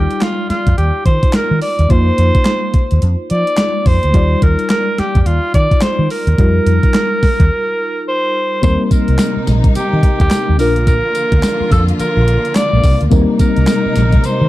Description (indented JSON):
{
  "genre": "R&B, new jack swing",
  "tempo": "107 BPM",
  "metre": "4/4",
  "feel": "swing 60% on 16ths",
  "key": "unclear",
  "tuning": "A4 = 440 Hz",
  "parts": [
    { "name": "bright alto saxophone", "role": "melody", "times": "0.0-14.5 s", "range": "F4 to D5", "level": "-18 LUFS", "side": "equal", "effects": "none" },
    { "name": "mellow FM electric piano", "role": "accompaniment", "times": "0.0-14.5 s", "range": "G3 to D5", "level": "-20 LUFS", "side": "left 2 dB", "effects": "chorus, tremolo" },
    { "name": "mellow fretless electric bass", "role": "bass", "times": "0.0-14.5 s", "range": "Bb1 to F3", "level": "-14 LUFS", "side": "equal", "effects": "none" },
    { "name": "clean 12-bit digital drum machine", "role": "drums", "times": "0.1-14.4 s", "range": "handclaps, hi-hat, kick drum, snare drum, tambourine", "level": "-14 LUFS", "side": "equal", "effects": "none" },
    { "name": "warm symphonic string section", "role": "sustained chords", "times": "8.6-14.5 s", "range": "C3 to F4", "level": "-22 LUFS", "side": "left 1 dB", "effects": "none" }
  ],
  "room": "digital ambience",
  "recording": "dark, warm production",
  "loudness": "-11 LUFS",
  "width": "side -16 dB against mid",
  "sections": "0.0-8.6 A section; 8.6-14.5 B section",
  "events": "break 7.5-8.6",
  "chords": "0.0 Ebmaj9; 1.9 F7sus4; 4.1 Ebmaj9; 6.4 F9sus4; 8.6 Eb6; 10.6 Bb; 13.1 Eb6"
}